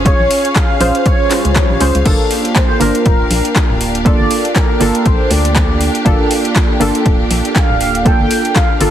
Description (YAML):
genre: deep house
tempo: 120 BPM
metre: 4/4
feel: swing 57% on 16ths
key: G minor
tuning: A4 = 440 Hz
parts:
  - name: warm analog keys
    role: stabs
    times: 0.0-8.9 s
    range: Bb3 to Db5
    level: -16 LUFS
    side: right 1 dB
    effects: chorus, sidechain pumping, dub echo
  - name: organ-like FM bass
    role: bass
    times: 0.0-8.9 s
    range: D1 to D2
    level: -17 LUFS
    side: equal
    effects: sidechain pumping
  - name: rich studio string section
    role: texture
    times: 0.0-8.9 s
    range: Db4 to F5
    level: -23 LUFS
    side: equal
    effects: sidechain pumping
  - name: mellow horn-like synth lead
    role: melody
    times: 0.1-8.9 s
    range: Bb4 to G5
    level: -19 LUFS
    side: right 1 dB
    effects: analog chorus, ping-pong delay
  - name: deep house drum kit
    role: drums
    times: 0.1-8.9 s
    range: crash cymbal, handclaps, hi-hat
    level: -20 LUFS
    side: left 1 dB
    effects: overdrive
  - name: electronic kick drum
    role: drums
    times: 0.1-8.7 s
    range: none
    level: -13 LUFS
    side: equal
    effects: overdrive
  - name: swell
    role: sound effects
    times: 1.3-2.1 s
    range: none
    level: -26 LUFS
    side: left 6 dB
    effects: none
room: light reverb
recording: heavily compressed radio sound, multiband compression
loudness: -10 LUFS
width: side -10 dB against mid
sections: 0.0-8.9 A section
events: swell 1.3-2.1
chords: 0.0 Bbm7; 2.1 Gm7